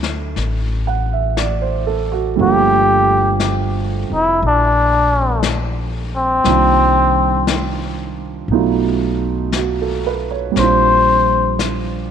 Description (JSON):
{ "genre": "jazz ballad", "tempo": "59 BPM", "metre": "4/4", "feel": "swing 69% on 8ths", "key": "unclear", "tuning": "A4 = 440 Hz", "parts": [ { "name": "warm baby grand piano", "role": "accompaniment", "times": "0.0-12.1 s", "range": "D3 to F#5", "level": "-20 LUFS", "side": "right 11 dB", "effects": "none" }, { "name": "upright bass", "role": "bass", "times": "0.0-12.1 s", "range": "F1 to D2", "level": "-21 LUFS", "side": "left 1 dB", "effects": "none" }, { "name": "jazz brush drum kit", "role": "drums", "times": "0.0-12.1 s", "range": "brushed snare drum, hi-hat, snare drum", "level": "-25 LUFS", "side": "left 8 dB", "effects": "none" }, { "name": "trumpet with cup mute", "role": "melody", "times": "2.4-11.6 s", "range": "C4 to C5", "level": "-15 LUFS", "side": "left 2 dB", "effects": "none" } ], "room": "moderate plate reverb, RT60 2.7 s", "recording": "1960s-style stereo with parts hard left and right", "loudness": "-14 LUFS", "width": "side -8 dB against mid", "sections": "0.0-12.1 A section", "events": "none", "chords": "0.0 D7; 2.4 Gm9; 6.4 Cm11; 8.5 B7#11; 10.5 Bb6" }